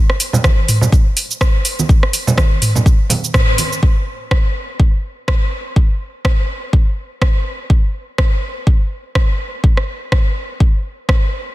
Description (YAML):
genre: house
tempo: 124 BPM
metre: 4/4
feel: swing 57% on 16ths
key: none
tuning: none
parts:
  - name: afro-pop drum kit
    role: drums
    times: 0.1-11.2 s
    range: hi-hat, rim click, shaker, toms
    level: -20 LUFS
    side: right 1 dB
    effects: soft clipping on snare
  - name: congas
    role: percussion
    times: 0.3-3.7 s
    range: none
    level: -18 LUFS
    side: right 2 dB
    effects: none
  - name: electronic kick drum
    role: drums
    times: 0.4-11.2 s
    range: none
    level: -13 LUFS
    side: equal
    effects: none
room: little or no reverb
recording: dense, heavily limited modern master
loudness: -13 LUFS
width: side -17 dB against mid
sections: 0.0-3.8 A section; 3.8-11.5 B section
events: band accent 3.3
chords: none